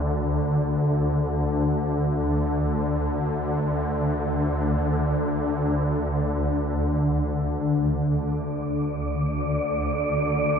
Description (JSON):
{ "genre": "dark ambient drone", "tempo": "free time", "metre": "none", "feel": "none", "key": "unclear", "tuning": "A4 = 440 Hz", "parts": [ { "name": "swarming drone", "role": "drone", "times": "0.0-10.6 s", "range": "D2 to D3", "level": "-22 LUFS", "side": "equal", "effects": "built-in reverb" }, { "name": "wind-like tuned noise texture", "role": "texture", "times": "8.4-10.6 s", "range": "D5", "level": "-27 LUFS", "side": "right 1 dB", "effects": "built-in reverb" } ], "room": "wet cathedral reverb, RT60 6.6 s", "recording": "none", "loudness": "-22 LUFS", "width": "side -7 dB against mid", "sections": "0.0-8.1 A section; 8.1-10.6 B section", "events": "none", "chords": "none" }